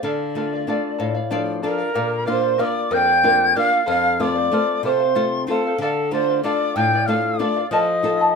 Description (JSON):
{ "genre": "andean folk, Andean ensemble", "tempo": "62 BPM (dotted quarters)", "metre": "6/8", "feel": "straight", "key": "D minor", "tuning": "A4 = 440 Hz", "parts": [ { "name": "reedy pan flute", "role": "melody", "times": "0.0-8.4 s", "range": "A4 to G5", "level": "-21 LUFS", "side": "right 2 dB", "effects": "none" }, { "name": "charango", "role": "accompaniment", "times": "0.0-8.4 s", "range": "A4 to A5", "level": "-24 LUFS", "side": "left 1 dB", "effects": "none" }, { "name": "nylon-string guitar", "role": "accompaniment", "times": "0.0-8.3 s", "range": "F2 to D5", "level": "-24 LUFS", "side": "left 3 dB", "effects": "none" }, { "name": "bright quena", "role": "second line", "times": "1.7-8.4 s", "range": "A5 to G6", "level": "-23 LUFS", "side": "left 4 dB", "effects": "none" } ], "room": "moderate small room reverb, RT60 0.6 s", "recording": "minimal, uncompressed stereo recording", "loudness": "-17 LUFS", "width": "side -5 dB against mid", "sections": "0.0-2.0 A section; 2.0-8.4 A section", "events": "nylon-string guitar fill 1.0-2.0", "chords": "0.0 Dm; 2.0 Bb; 3.9 F; 5.8 Dm; 7.7 F7", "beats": "| 0.04 1.00 | 1.96 2.92 | 3.88 4.84 | 5.80 6.76 | 7.72" }